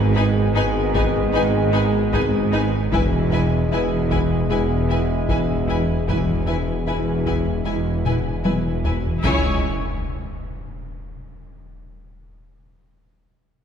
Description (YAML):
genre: cinematic, hybrid orchestral and electronic film score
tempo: 76 BPM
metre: 4/4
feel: straight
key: C# minor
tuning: A4 = 440 Hz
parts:
  - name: clear trombone section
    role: sustained chords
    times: 0.0-9.6 s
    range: D#3 to G#3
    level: -29 LUFS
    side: right 5 dB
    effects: none
  - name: warm French horn section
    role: sustained chords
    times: 0.0-9.6 s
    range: B3 to G#4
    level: -28 LUFS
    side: left 5 dB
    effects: none
  - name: mellow tuba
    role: bass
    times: 0.0-9.6 s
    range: E1 to C#2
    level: -28 LUFS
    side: right 1 dB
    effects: none
  - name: rich symphonic cello section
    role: bass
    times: 0.0-9.7 s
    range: C#2 to G#2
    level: -26 LUFS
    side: right 2 dB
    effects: none
  - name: rich symphonic double bass section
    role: bass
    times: 0.0-9.7 s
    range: E1 to C#2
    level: -27 LUFS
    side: right 2 dB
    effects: none
  - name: swelling detuned saw bass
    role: bass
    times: 0.0-9.7 s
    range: E1 to C#2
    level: -28 LUFS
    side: left 1 dB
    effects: none
  - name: clear chamber violin section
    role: melody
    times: 0.2-9.7 s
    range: G#5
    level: -32 LUFS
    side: left 5 dB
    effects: none
  - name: clear symphonic violin section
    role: second line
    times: 0.2-9.7 s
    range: B4 to C#5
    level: -30 LUFS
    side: left 4 dB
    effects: none
  - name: rich symphonic viola section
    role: accompaniment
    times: 0.2-9.7 s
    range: D#4 to E4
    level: -30 LUFS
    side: right 1 dB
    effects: none
  - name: tight sequenced synth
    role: arpeggios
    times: 0.2-9.1 s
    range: E3 to G#4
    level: -31 LUFS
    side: left 2 dB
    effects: none
  - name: taiko ensemble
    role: drums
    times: 0.9-10.8 s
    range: none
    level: -27 LUFS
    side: left 1 dB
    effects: none
  - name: impact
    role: sound effects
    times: 9.2-12.4 s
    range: none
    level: -31 LUFS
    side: left 1 dB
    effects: none
room: wet concert hall reverb, RT60 2.2 s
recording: heard from further back in the room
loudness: -18 LUFS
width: side -8 dB against mid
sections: 0.0-9.2 A section; 9.2-12.4 B section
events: drum fill 8.1-9.2; impact 9.2-12.4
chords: 0.0 G#m; 2.9 E; 9.2 C#m